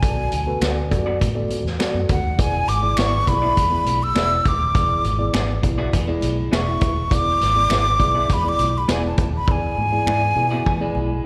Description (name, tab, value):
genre	uptempo 1960s-style soul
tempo	102 BPM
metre	4/4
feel	straight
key	unclear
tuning	A4 = 441 Hz
part	breathy jazz flute	melody	0.0-11.3 s	F#5 to E6	-23 LUFS	equal	analog delay
part	mellow tine electric piano	accompaniment	0.0-11.1 s	B2 to E5	-29 LUFS	equal	lush chorus, slapback echo
part	vintage muted fingered electric bass	bass	0.0-11.2 s	D#1 to E3	-26 LUFS	equal	none
part	vintage drum kit	drums	0.0-10.8 s	hi-hat, kick drum, snare drum	-25 LUFS	equal	none
part	congas	percussion	0.3-11.1 s	none	-39 LUFS	equal	none
part	electric guitar through a small old amp	stabs	0.6-10.6 s	B3 to D5	-30 LUFS	equal	slapback echo
part	finger snaps	percussion	0.6-10.2 s	none	-33 LUFS	equal	none
part	electric guitar at the edge of break-up	riff	5.8-6.9, 10.5-11.3 s	G#3 to G#4	-34 LUFS	equal	spring reverb, slapback echo
room	light reverb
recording	live gig heard through the venue's PA, recital hall reverb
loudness	-20 LUFS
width	mono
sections	0.0-11.3 A section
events	drum fill 9.5-11.3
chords	0.0 Bm7; 2.4 E7